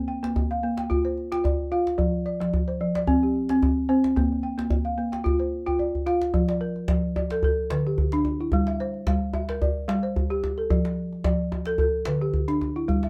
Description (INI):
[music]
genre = west african traditional, West African string and xylophone music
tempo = 110 BPM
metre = 4/4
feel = swing 54% on 16ths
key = unclear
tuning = A4 = 443 Hz
[part]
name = balafon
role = arpeggios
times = 0.0-13.1 s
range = D3 to G5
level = -26 LUFS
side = equal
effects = none
[part]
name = djembe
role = percussion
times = 0.2-13.1 s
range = none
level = -30 LUFS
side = equal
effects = none
[sound]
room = moderate small room reverb, RT60 0.5 s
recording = dark, warm production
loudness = -25 LUFS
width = mono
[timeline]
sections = 0.0-6.3 A section; 6.3-13.1 B section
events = drum fill 5.7-6.3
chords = 0.0 Bb; 2.0 F5; 4.2 Bb; 6.3 N.C.; 7.4 D5; 8.5 Gm; 10.7 F; 11.8 D5